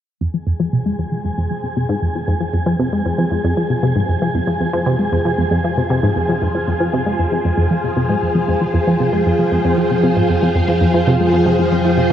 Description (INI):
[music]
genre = ambient, sequencer-driven space music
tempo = 116 BPM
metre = 4/4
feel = straight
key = F minor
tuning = A4 = 439 Hz
[part]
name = phased string machine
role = sustained chords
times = 0.2-12.1 s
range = F3 to C5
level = -20 LUFS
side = right 1 dB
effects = ensemble chorus, phaser
[part]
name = tight sequenced synth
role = riff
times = 0.2-12.1 s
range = F2 to Ab3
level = -17 LUFS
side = equal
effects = chorus, ping-pong delay
[part]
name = analog drone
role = bass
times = 2.2-12.1 s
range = F2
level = -29 LUFS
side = equal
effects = none
[part]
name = wind-like tuned noise texture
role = texture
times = 0.7-12.1 s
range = Ab4 to Ab5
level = -22 LUFS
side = left 1 dB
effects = built-in reverb
[sound]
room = wet huge ambient reverb, RT60 7.2 s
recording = worn, warbling old tape, cassette tape, warbly pitch drift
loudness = -15 LUFS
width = side -10 dB against mid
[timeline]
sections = 0.2-12.1 A section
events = fade-in on string machine 0.2-12.1; filter sweep on synth arpeggio sound 0.2-12.1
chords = 0.2 Fm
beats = | 0.21 0.73 1.24 1.76 | 2.28 2.80 3.31 3.83 | 4.35 4.87 5.38 5.90 | 6.42 6.93 7.45 7.97 | 8.48 9.00 9.52 10.04 | 10.55 11.07 11.59 12.11